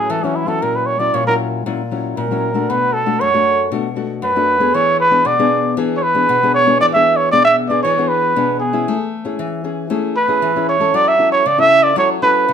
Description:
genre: samba.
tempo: 116 BPM.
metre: 4/4.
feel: straight.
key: unclear.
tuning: A4 = 442 Hz.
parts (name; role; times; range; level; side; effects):
dark trumpet; melody; 0.0-12.5 s; C#4 to E5; -14 LUFS; right 2 dB; none.
nylon-string guitar; accompaniment; 0.0-12.5 s; F#2 to A4; -19 LUFS; left 5 dB; none.
room: moderate studio reverb, RT60 0.7 s.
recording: minimal, uncompressed stereo recording.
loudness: -13 LUFS.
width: side -8 dB against mid.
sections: 0.0-6.8 A section; 6.8-12.5 B section.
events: trumpet solo 0.0-6.8.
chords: 0.0 A6; 0.6 F#7/A#; 2.7 Bm7; 4.7 E7; 8.9 Amaj7; 10.9 F#m7.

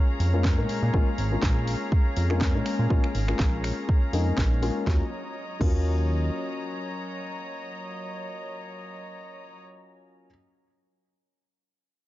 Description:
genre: nu-disco, nu disco.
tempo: 122 BPM.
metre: 4/4.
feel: swing 55% on 16ths.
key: Eb minor.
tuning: A4 = 440 Hz.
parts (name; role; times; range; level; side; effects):
dark baby grand piano; accompaniment; 0.0-10.3 s; Gb3 to Bb4; -32 LUFS; left 3 dB; sidechain pumping, low-pass filter, analog delay.
rich chamber string section; sustained chords; 0.0-9.6 s; Gb3 to Bb5; -36 LUFS; equal; sidechain pumping.
chorused synth bass; bass; 0.2-6.3 s; Ab1 to Bb2; -25 LUFS; equal; none.
house drum kit; drums; 0.2-5.8 s; crash cymbal, finger snaps, hi-hat, snare drum; -35 LUFS; equal; overdrive.
electronic kick drum; drums; 0.4-5.8 s; none; -23 LUFS; equal; overdrive.
room: light reverb, studio reverb.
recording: dark, warm production, nothing above 7.5 kHz.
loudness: -23 LUFS.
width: side -16 dB against mid.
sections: 0.0-4.9 A section; 4.9-8.8 B section.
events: filter sweep on grand piano 0.0-4.9.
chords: 0.0 Bbm7; 4.9 Ebm7.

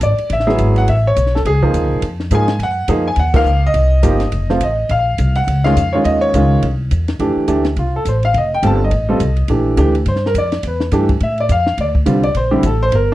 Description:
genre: jazz piano trio.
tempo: 209 BPM.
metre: 4/4.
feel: swing 60% on 8ths.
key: Db major, F major from 7.2 s.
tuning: A4 = 440 Hz.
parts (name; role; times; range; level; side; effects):
clear upright piano; melody; 0.0-13.1 s; D3 to A5; -16 LUFS; equal; slapback echo.
upright bass; bass; 0.0-13.1 s; F1 to A2; -16 LUFS; equal; none.
compact cocktail drum kit; drums; 0.0-13.0 s; crash cymbal, hi-hat, kick drum, ride cymbal, snare drum; -21 LUFS; equal; none.
room: little or no reverb.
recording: dry, close 1970s-style studio recording.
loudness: -13 LUFS.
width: side -15 dB against mid.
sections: 0.0-7.2 A section; 7.2-13.1 B section.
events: band accent 3.3; upright piano solo 7.2-13.1.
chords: 0.3 Amaj9; 1.5 Db; 2.6 Gbmaj7; 3.8 Cm7; 4.3 F7; 4.9 Bbm; 6.0 Dbadd9; 6.6 C; 7.2 F6; 8.3 F9; 9.5 Bb6; 10.6 Em7; 11.2 Fmaj7; 11.8 D7(no3).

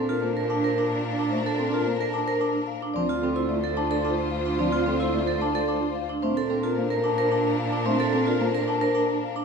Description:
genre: classical, minimalist pattern music.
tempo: 110 BPM.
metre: 3/4.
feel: straight.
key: unclear.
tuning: A4 = 440 Hz.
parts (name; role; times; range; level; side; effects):
marimba with medium mallets; melody; 0.0-9.4 s; A4 to A5; -29 LUFS; left 10 dB; none.
mellow hollow alto flute; second line; 0.0-9.3 s; D4 to F4; -33 LUFS; right 5 dB; none.
dark bass clarinet; accompaniment; 0.0-8.5 s; F3 to C4; -33 LUFS; equal; none.
rich studio string section; sustained chords; 0.0-9.3 s; D4 to C5; -32 LUFS; left 5 dB; none.
vibraphone with medium hard mallets; arpeggios; 0.0-9.4 s; C4 to Bb4; -26 LUFS; right 4 dB; none.
rich cello; bass; 0.0-9.4 s; D2 to Bb2; -32 LUFS; right 2 dB; none.
room: moderate scoring stage reverb, RT60 1.6 s.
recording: minimal, uncompressed stereo recording.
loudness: -22 LUFS.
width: side -5 dB against mid.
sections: 0.0-9.4 A section.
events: none.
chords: 0.0 Bbmaj7; 3.0 Dm7; 6.2 Bbmaj7.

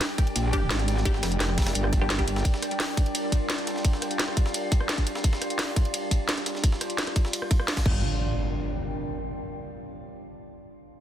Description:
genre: dark technical drum and bass.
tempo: 172 BPM.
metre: 4/4.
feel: straight.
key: G minor.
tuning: A4 = 439 Hz.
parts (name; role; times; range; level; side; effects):
metallic inharmonic drone; sustained chords; 0.0-8.0 s; G3 to G4; -33 LUFS; equal; chorus, built-in reverb, sidechain pumping.
breakbeat sampler-style drum kit; drums; 0.0-7.9 s; hi-hat, ride cymbal, snare drum; -36 LUFS; right 1 dB; high-pass filter on cymbals, high-pass filter on snare, high-pass filter on hats.
drum and bass drum kit; drums; 0.0-7.9 s; crash cymbal, hi-hat, rim click, snare drum; -30 LUFS; equal; none.
warbly tape-like pad; texture; 0.0-9.4 s; D4 to G5; -39 LUFS; right 1 dB; chorus, built-in reverb, sidechain pumping.
electronic kick drum; drums; 0.2-7.9 s; none; -23 LUFS; equal; none.
metallic wobble bass; bass; 0.4-2.4, 7.9-8.0 s; F1 to Bb1; -27 LUFS; equal; chorus, overdrive, sidechain pumping.
filtered dub chord stab; stabs; 0.5-2.2 s; G3 to G4; -35 LUFS; left 2 dB; phaser, tape echo.
impact; sound effects; 7.9-9.3 s; none; -31 LUFS; equal; none.
room: light reverb.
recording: dense, heavily limited modern master.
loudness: -24 LUFS.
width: side -11 dB against mid.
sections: 0.0-8.0 A section; 8.0-9.4 B section.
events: fade-out on ambient pad 0.0-8.0.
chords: 0.0 Gm.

